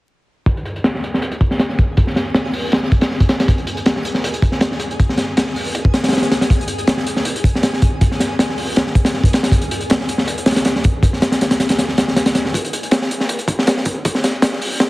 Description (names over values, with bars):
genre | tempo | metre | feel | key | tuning
drum and bass, jungle | 159 BPM | 4/4 | swing 53% on 16ths | unclear | A4 = 440 Hz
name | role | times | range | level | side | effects
crunchy breakbeat drum kit | drums | 0.5-14.9 s | hi-hat, kick drum, snare drum | -14 LUFS | equal | high-pass filter on kick, low-pass filter on kick, high-pass filter on hats, low-pass filter on hats, high-pass filter on snare, low-pass filter on snare, high-pass filter on room, low-pass filter on room
twinkling granular texture | texture | 1.4-12.6 s | G#4 to G#5 | -31 LUFS | left 2 dB | built-in reverb
room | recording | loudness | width
light reverb | dense, heavily limited modern master, vinyl crackle | -14 LUFS | side -20 dB against mid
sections
0.5-12.5 A section; 12.5-14.9 B section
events
filter sweep on drum 0.5-12.5; kick drops out 11.8-12.5; build-up 12.5-14.9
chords
none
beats
| 0.47 0.84 1.22 1.60 | 1.98 2.35 2.73 3.11 | 3.48 3.86 4.24 4.62 | 5.00 5.37 5.75 6.13 | 6.50 6.88 7.26 7.64 | 8.01 8.39 8.77 9.15 | 9.52 9.90 10.28 10.65 | 11.03 11.41 11.79 12.16 | 12.54 12.92 13.30 13.67 | 14.05 14.43 14.81